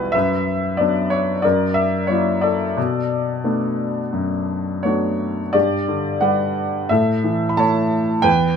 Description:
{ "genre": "classical, lyrical solo piano", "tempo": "89 BPM", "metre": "4/4", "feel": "uneven beats, rubato", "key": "B minor", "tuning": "A4 = 445 Hz", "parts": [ { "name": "clear grand piano", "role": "solo", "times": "0.0-8.6 s", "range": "B1 to B5", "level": "-17 LUFS", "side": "left 1 dB", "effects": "none" } ], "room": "little or no reverb", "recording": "close, detailed microphones", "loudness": "-17 LUFS", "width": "side -6 dB against mid", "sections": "0.0-5.5 A section; 5.5-8.6 B section", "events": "none", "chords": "0.1 Bm/F#; 1.4 F#7; 2.8 Bm7; 5.5 G; 6.9 A" }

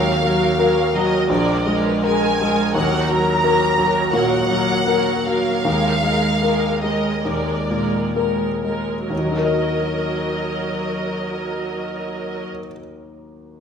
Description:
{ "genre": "classical", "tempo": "60-87 BPM", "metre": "4/4", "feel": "rubato", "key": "Eb minor", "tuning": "A4 = 440 Hz", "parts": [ { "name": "clear grand piano", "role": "melody", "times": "0.0-13.6 s", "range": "Bb1 to Eb5", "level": "-20 LUFS", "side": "left 2 dB", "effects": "none" }, { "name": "rich studio violin section", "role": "melody", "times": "0.0-12.4 s", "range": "Cb5 to Bb5", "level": "-23 LUFS", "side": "equal", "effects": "none" }, { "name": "warm studio viola section", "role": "accompaniment", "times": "0.0-12.5 s", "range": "Gb3 to Bb4", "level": "-23 LUFS", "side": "right 3 dB", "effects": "none" } ], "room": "wet recital hall reverb, RT60 1.5 s", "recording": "minimal, uncompressed stereo recording", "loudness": "-17 LUFS", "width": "side -7 dB against mid", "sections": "0.0-9.1 A section; 9.1-12.5 B section", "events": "slowing down 1.3-9.1", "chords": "0.0 Ebm; 1.3 Bb7; 2.8 Ebm; 5.7 Bb7/Eb; 9.1 Ebm" }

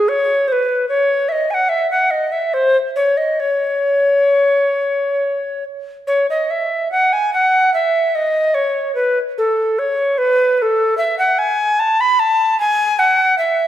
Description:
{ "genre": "classical, baroque-style fantasia for unaccompanied recorder", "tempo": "66-76 BPM", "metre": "3/4", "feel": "rubato", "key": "C# minor", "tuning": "A4 = 443 Hz", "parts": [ { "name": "tenor recorder", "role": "solo", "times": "0.0-13.7 s", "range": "G#4 to B5", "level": "-14 LUFS", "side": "equal", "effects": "none" } ], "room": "wet recital hall reverb, RT60 1.8 s", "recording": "recorded in a church or concert hall", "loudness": "-14 LUFS", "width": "side -12 dB against mid", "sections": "0.0-6.1 A section; 6.1-13.7 B section", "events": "none", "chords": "none" }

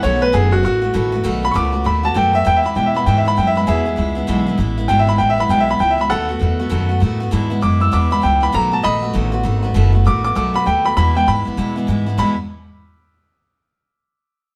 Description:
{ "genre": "rockabilly", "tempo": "197 BPM", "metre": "4/4", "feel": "swing 63% on 8ths", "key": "E major", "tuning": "A4 = 438 Hz", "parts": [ { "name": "bright upright piano", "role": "melody", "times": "0.0-12.4 s", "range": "F#4 to E6", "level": "-20 LUFS", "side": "equal", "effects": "none" }, { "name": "picked steel-string acoustic guitar", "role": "accompaniment", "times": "0.0-12.3 s", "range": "E2 to F#4", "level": "-24 LUFS", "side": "equal", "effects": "none" }, { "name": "upright bass", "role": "bass", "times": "0.0-12.4 s", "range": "F#1 to B2", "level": "-21 LUFS", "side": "equal", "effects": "none" } ], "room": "moderate stone room reverb, RT60 1.0 s", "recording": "band playing live in one room", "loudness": "-17 LUFS", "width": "mono", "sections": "0.0-2.5 A section; 2.5-12.2 B section; 12.2-13.4 C section", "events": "none", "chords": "0.0 B7; 2.5 E; 6.1 B7; 7.3 E; 8.5 B7; 11.0 E" }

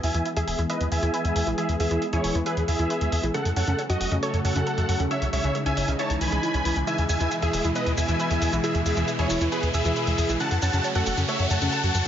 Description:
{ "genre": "uplifting trance", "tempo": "136 BPM", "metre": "4/4", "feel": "straight", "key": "E major", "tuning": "A4 = 442 Hz", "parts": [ { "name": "dense compressed supersaw", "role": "melody", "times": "0.0-12.1 s", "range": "E4 to B5", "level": "-27 LUFS", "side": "equal", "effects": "low-pass filter, digital delay" }, { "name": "lush unison pad", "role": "sustained chords", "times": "0.0-12.1 s", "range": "B2 to G#4", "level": "-30 LUFS", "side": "equal", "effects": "chorus" }, { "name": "analog pluck", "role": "arpeggios", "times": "0.0-12.1 s", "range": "C#3 to E5", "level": "-30 LUFS", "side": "right 1 dB", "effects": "chorus, digital delay" }, { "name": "tight sequencer bass", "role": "bass", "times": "0.0-12.1 s", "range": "E1 to F#2", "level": "-26 LUFS", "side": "equal", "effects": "none" }, { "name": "electronic hi-hat and shaker", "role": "drums", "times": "0.0-12.1 s", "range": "none", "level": "-34 LUFS", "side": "equal", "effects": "none" }, { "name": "riser", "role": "sound effects", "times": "3.5-12.1 s", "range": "none", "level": "-35 LUFS", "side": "left 1 dB", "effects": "none" } ], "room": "moderate lush hall reverb, RT60 2.1 s", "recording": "nothing above 7.5 kHz", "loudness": "-22 LUFS", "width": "side -10 dB against mid", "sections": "0.0-12.1 A section", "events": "build-up 0.0-12.1; filter sweep on supersaw synth 0.0-12.1; riser 3.5-12.1", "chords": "0.0 E; 3.3 F#m; 5.1 C#madd9; 6.9 E; 10.4 F#m" }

